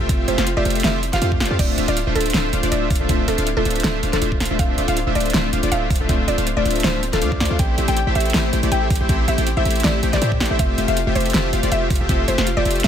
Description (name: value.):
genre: future bass.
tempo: 160 BPM.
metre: 4/4.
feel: swing 54% on 16ths, half-time.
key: D minor.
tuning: A4 = 439 Hz.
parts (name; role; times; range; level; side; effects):
Celtic harp; arpeggios; 0.0-12.9 s; C4 to D5; -30 LUFS; left 2 dB; sidechain pumping, digital delay.
big bright polysynth; riff; 0.0-12.9 s; A3 to G5; -22 LUFS; left 2 dB; sidechain pumping.
warm 808-style bass; bass; 0.0-12.9 s; D1 to A2; -22 LUFS; equal; sidechain pumping.
electronic kick drum; drums; 0.1-12.2 s; none; -21 LUFS; equal; small room ambience.
pop drum kit; drums; 0.1-12.9 s; crash cymbal, hi-hat, snare drum; -24 LUFS; right 1 dB; small room ambience.
mallet-like synth pluck; melody; 0.3-12.9 s; A4 to G5; -26 LUFS; equal; chorus, sidechain pumping, digital delay.
room: light reverb, digital ambience.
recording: none.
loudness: -16 LUFS.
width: side -9 dB against mid.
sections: 0.0-12.9 A section.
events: none.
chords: 0.0 Fmaj9; 1.6 Dm9; 7.6 Am7; 10.6 Fmaj9.